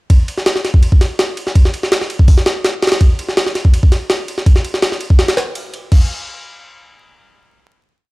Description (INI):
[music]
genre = drum and bass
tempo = 165 BPM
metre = 4/4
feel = straight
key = none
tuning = none
[part]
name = jungle sampler-style drum kit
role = drums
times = 0.1-6.0 s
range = crash cymbal, hi-hat, kick drum, ride cymbal, snare drum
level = -11 LUFS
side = equal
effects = studio ambience
[sound]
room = digital ambience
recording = dry, gritty hardware recording, transformer saturation, vinyl crackle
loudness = -11 LUFS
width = side -23 dB against mid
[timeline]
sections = 0.1-5.9 drop; 5.9-7.4 final hit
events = drop 0.1-5.9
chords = none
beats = | 0.10 0.47 0.83 1.19 | 1.56 1.92 2.28 2.65 | 3.01 3.38 3.74 4.10 | 4.47 4.83 5.19 5.56 | 5.92